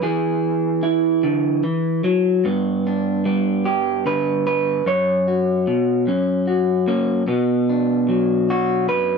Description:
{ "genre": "folk, solo fingerstyle acoustic guitar", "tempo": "50 BPM (dotted quarters)", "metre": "6/8", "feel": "straight", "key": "unclear", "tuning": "A4 = 437 Hz", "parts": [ { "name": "electric guitar through a small old amp", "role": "solo", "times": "0.0-9.2 s", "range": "F#2 to C#5", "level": "-17 LUFS", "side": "equal", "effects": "none" } ], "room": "light reverb", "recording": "dark, warm production", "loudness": "-17 LUFS", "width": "side -5 dB against mid", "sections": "0.0-7.3 A section; 7.3-9.2 A section", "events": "none", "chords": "0.0 E; 2.4 G; 4.9 F#sus4; 6.1 F#; 7.3 Bm" }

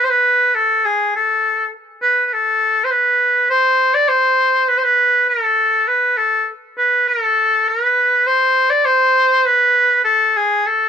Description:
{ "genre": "arabic", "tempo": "101 BPM", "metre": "4/4", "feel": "straight", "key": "unclear", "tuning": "A4 = 440 Hz", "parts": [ { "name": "clear oboe", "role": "solo", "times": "0.0-10.9 s", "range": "G#4 to D5", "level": "-13 LUFS", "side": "equal", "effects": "none" } ], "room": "studio reverb", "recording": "dry, close 1970s-style studio recording", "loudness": "-13 LUFS", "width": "side -8 dB against mid", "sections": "0.0-10.9 A section", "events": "none", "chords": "none" }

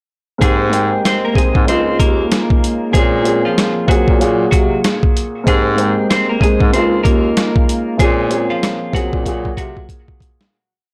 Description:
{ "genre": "hip hop, boom-bap hip-hop", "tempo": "95 BPM", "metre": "4/4", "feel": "swing 62% on 16ths", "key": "unclear", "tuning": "A4 = 438 Hz", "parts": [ { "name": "clean electric guitar", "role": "melody", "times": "0.4-9.9 s", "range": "F3 to C5", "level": "-23 LUFS", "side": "equal", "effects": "harmonic tremolo, high-pass filter, low-pass filter, tape echo" }, { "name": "dark upright piano", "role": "accompaniment", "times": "0.4-10.5 s", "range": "Ab2 to G5", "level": "-20 LUFS", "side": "equal", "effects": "cassette tape, high-pass filter, low-pass filter" }, { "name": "warm bass clarinet", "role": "bass", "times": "0.4-9.8 s", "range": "Db2 to C3", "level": "-21 LUFS", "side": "equal", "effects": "transformer saturation" }, { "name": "boom bap sampler-style drum kit", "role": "drums", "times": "0.4-10.5 s", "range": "hi-hat, kick drum, rim click, snare drum", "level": "-18 LUFS", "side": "equal", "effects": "none" } ], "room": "little or no reverb", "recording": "blown-out, overdriven recording, overdrive", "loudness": "-15 LUFS", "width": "mono", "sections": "0.4-10.5 verse", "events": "fade-out 8.0-10.5; drum fill 9.3-10.5", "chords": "0.4 Abmaj9; 1.7 Db6; 2.9 Bbm7; 5.5 Abmaj9; 6.7 Db6; 8.0 Bbm7" }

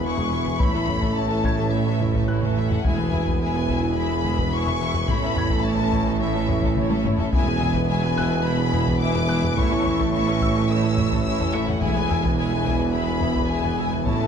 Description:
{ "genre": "cinematic, hybrid orchestral and electronic film score", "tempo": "107 BPM", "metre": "4/4", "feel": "straight", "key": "unclear", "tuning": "A4 = 441 Hz", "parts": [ { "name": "warm studio violin section", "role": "melody", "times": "0.0-14.3 s", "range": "E5 to E6", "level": "-29 LUFS", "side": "left 5 dB", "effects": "none" }, { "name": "rich symphonic violin section", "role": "second line", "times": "0.0-14.3 s", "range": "G#4 to G#5", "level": "-32 LUFS", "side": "left 3 dB", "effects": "none" }, { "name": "warm symphonic viola section", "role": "accompaniment", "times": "0.0-14.3 s", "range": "E3 to G#4", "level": "-33 LUFS", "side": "equal", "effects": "none" }, { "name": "warbly tape-like pad", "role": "sustained chords", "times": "0.0-14.3 s", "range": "E3 to E5", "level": "-32 LUFS", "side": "left 1 dB", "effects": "chorus, built-in reverb, tremolo" }, { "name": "warm French horn section", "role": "sustained chords", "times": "0.0-14.3 s", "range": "B3 to E4", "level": "-32 LUFS", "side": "left 2 dB", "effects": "none" }, { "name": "warm trombone section", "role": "sustained chords", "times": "0.0-14.3 s", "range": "A2 to E3", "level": "-31 LUFS", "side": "right 3 dB", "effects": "none" }, { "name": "harp-like synth pluck", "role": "arpeggios", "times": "0.0-14.3 s", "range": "E3 to A4", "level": "-31 LUFS", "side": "left 5 dB", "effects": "chorus, tape echo" }, { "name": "clear symphonic double bass section", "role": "bass", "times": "0.0-14.3 s", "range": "E1 to A1", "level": "-29 LUFS", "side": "right 4 dB", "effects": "none" }, { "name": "mellow tuba", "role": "bass", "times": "0.0-14.3 s", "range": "E1 to A1", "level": "-29 LUFS", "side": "right 4 dB", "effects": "none" }, { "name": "rich symphonic cello section", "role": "bass", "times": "0.0-14.3 s", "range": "E2 to A2", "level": "-28 LUFS", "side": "right 4 dB", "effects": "none" }, { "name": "impact", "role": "sound effects", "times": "0.0-0.6 s", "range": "none", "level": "barely audible", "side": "none", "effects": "none" }, { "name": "felt-muted upright piano", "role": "texture", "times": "0.0-14.1 s", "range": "A4 to C#7", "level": "-38 LUFS", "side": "left 2 dB", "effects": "tape echo" }, { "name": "taiko ensemble", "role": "drums", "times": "0.2-14.3 s", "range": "none", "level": "-27 LUFS", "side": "left 1 dB", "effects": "none" } ], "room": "wet recital hall reverb, RT60 1.6 s", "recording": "dark, warm production", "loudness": "-19 LUFS", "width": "side -7 dB against mid", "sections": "0.0-14.3 A section", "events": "impact 0.0-0.6; drum fill 6.8-7.3", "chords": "0.0 E; 0.6 A; 2.8 E; 5.1 A; 7.3 E; 9.6 A; 11.8 E" }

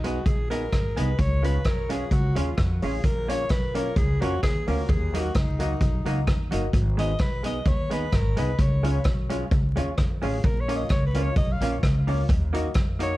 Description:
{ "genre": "ska", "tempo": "130 BPM", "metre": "4/4", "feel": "swing 53% on 8ths", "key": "G# dorian", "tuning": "A4 = 440 Hz", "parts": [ { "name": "breathy alto saxophone", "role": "melody", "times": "0.0-13.2 s", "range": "D#4 to E#5", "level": "-32 LUFS", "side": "left 1 dB", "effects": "tape echo" }, { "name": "vintage hollow-body jazz guitar", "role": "accompaniment", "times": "0.0-13.1 s", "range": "F#3 to F#4", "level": "-32 LUFS", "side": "right 3 dB", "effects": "tape echo" }, { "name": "dark upright piano", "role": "stabs", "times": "0.0-13.2 s", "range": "E#4 to D#5", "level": "-35 LUFS", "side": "left 4 dB", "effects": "none" }, { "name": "upright bass", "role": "bass", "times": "0.0-13.1 s", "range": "G1 to E#2", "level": "-26 LUFS", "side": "equal", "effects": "none" }, { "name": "street-band drum kit", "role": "drums", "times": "0.0-13.1 s", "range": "hi-hat, kick drum, rim click", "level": "-25 LUFS", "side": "equal", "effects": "none" } ], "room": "little or no reverb", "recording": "dark, warm production, vinyl crackle", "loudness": "-22 LUFS", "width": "side -17 dB against mid", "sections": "0.0-13.2 A section", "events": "alto saxophone solo 0.0-13.2", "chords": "0.0 G#m; 1.2 C#; 3.0 A#m; 4.9 D#m; 6.7 G#m; 8.6 C#; 10.4 A#m; 12.3 D#m" }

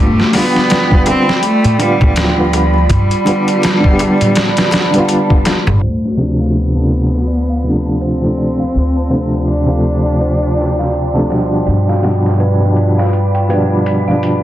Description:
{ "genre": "trip hop", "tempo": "82 BPM", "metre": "4/4", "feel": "swing 58% on 16ths", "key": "D dorian", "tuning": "A4 = 440 Hz", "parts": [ { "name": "rich cello", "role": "melody", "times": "0.0-11.3 s", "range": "F3 to D4", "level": "-18 LUFS", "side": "equal", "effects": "dub echo" }, { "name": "felt-muted upright piano", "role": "accompaniment", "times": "0.0-14.4 s", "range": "B2 to G4", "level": "-16 LUFS", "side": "equal", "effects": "tremolo, low-pass filter" }, { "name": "warbly tape-like pad", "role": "sustained chords", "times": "0.0-14.4 s", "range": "F4 to C6", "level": "-20 LUFS", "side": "right 3 dB", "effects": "chorus, built-in reverb" }, { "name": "upright bass", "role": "bass", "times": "0.0-14.4 s", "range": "G1 to G2", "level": "-16 LUFS", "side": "equal", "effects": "none" }, { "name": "trip hop sampler-style drum kit", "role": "drums", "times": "0.2-14.4 s", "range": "hi-hat, kick drum, snare drum", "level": "-16 LUFS", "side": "equal", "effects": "high-pass filter on hats, high-pass filter on kick, high-pass filter on snare, high-pass filter on room" }, { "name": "darbuka", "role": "percussion", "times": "0.2-5.8 s", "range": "none", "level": "-21 LUFS", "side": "left 1 dB", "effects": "none" }, { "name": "dark detuned synth bell", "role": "arpeggios", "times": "5.8-14.4 s", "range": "B4 to C6", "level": "-24 LUFS", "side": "right 1 dB", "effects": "chorus, low-pass filter, tape echo" } ], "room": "moderate echo chamber reverb, RT60 2.2 s", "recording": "dense, heavily limited modern master, vinyl crackle, low-pass filter", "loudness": "-11 LUFS", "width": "side -13 dB against mid", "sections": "0.0-5.8 A section; 5.8-14.4 B section", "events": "filter sweep on felt piano 0.0-5.8, 5.8-14.4; filter sweep on ambient pad 5.8-14.4; filter sweep on synth bell 5.8-14.4; filter sweep 5.8-14.4", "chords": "0.0 G7; 5.8 Dm7; 11.7 G7" }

